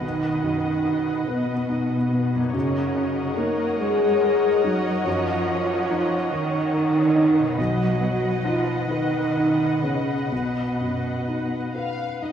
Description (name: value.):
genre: cinematic, emotional film score for orchestra.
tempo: 41-48 BPM (dotted quarters).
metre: 6/8.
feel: rubato.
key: unclear.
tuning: A4 = 440 Hz.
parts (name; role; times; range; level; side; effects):
muted symphonic violin section; melody; 0.0-12.3 s; F#5; -34 LUFS; left 2 dB; none.
muted studio violin section; second line; 0.0-12.3 s; C#5 to E#5; -32 LUFS; right 1 dB; none.
felt-muted upright piano; accompaniment; 0.0-12.3 s; B1 to C#5; -29 LUFS; left 1 dB; none.
muted symphonic viola section; accompaniment; 0.0-12.3 s; A#4 to C#5; -34 LUFS; left 1 dB; none.
mellow French horn section; sustained chords; 0.0-11.7 s; B3 to A#4; -24 LUFS; equal; none.
concert harp; arpeggios; 0.0-11.4 s; F#2 to C#5; -33 LUFS; left 3 dB; none.
muted symphonic cello section; bass; 0.0-11.7 s; B2 to A#3; -27 LUFS; right 2 dB; none.
room: wet recital hall reverb, RT60 1.5 s.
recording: recorded in a church or concert hall.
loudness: -20 LUFS.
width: side -8 dB against mid.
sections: 0.0-12.3 A section.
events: none.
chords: 0.0 B; 2.5 F#6; 7.6 B.